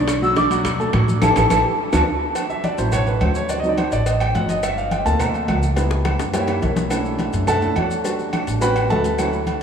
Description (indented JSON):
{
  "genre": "Afro-Cuban jazz",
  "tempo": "211 BPM",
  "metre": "4/4",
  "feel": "straight",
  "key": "D major",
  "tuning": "A4 = 440 Hz",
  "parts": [
    { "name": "warm concert grand piano", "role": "accompaniment", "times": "0.0-9.4 s", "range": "D3 to B5", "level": "-21 LUFS", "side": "right 1 dB", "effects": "none" },
    { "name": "upright bass", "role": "bass", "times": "0.0-9.6 s", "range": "G1 to B2", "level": "-22 LUFS", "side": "equal", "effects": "none" },
    { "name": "bongos and cowbell", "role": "percussion", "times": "0.1-9.6 s", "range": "none", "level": "-30 LUFS", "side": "left 5 dB", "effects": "none" },
    { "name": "claves", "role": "percussion", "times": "0.1-9.3 s", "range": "none", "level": "-34 LUFS", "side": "left 1 dB", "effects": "none" },
    { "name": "congas", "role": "percussion", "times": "0.1-9.6 s", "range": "none", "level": "-28 LUFS", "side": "left 2 dB", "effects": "none" },
    { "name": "maracas", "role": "percussion", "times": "0.1-9.6 s", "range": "none", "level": "-38 LUFS", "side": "left 6 dB", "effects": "none" },
    { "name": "timbales and agogo bells", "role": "percussion", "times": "0.1-9.6 s", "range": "none", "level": "-28 LUFS", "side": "right 4 dB", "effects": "none" },
    { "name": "breathy mellow jazz flute", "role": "melody", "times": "0.2-2.0 s", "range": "A5 to E6", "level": "-23 LUFS", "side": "equal", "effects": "none" }
  ],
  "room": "wet cathedral reverb, RT60 7.0 s",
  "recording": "in a vast, echoing space, small room reverb",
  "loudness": "-17 LUFS",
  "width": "side -7 dB against mid",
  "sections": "0.0-2.4 A section; 2.4-9.6 A section",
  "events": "flute solo 0.0-2.4; band accent 1.2-2.4; drum fill 1.5-2.4, 5.8-6.9; grand piano solo 2.4-9.6",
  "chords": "0.1 Bm7; 1.2 A5; 1.8 D7; 2.4 Dmaj9; 3.5 D7b9; 4.6 Gm11; 5.8 C#m7b5; 6.3 F#7b9; 6.9 Bm11; 8.0 Em7; 8.6 A13"
}